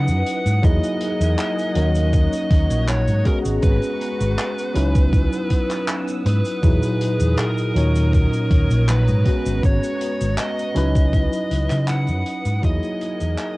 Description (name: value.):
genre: vaporwave.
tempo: 80 BPM.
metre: 4/4.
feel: straight.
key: G# minor.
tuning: A4 = 440 Hz.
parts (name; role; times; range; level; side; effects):
fuzz lead guitar; melody; 0.0-13.6 s; A#4 to F#5; -27 LUFS; equal; distortion, cassette tape, tape echo.
tine electric piano; accompaniment; 0.0-13.6 s; A#2 to C#5; -23 LUFS; equal; fast stereo tremolo, analog chorus, vintage 12-bit sampler grit.
soft string machine; sustained chords; 0.0-13.6 s; B3 to E6; -35 LUFS; equal; phaser, ensemble chorus, plate reverb.
fingered electric bass; bass; 0.0-13.3 s; G#1 to C#3; -19 LUFS; equal; none.
natural country drum kit; drums; 0.1-13.5 s; cabasa, handclaps, hi-hat; -31 LUFS; equal; vintage 12-bit sampler grit, cassette tape.
electronic kick drum; drums; 0.6-12.8 s; none; -17 LUFS; equal; overdrive, vintage 12-bit sampler grit, cassette tape.
room: light reverb.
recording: home recording on cassette.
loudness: -17 LUFS.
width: side -21 dB against mid.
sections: 0.0-13.6 A section.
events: fade-out 10.6-13.6.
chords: 0.0 C#m11; 0.6 Emaj9#11; 1.8 D#m7; 3.3 G#m11; 4.8 C#m11; 6.6 Emaj9#11; 7.8 D#m7; 9.3 G#m11; 10.8 C#m11; 12.6 Emaj9#11.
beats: | 0.64 1.39 2.13 2.88 | 3.63 4.38 5.13 5.88 | 6.63 7.38 8.13 8.88 | 9.63 10.38 11.13 11.88 | 12.63 13.38.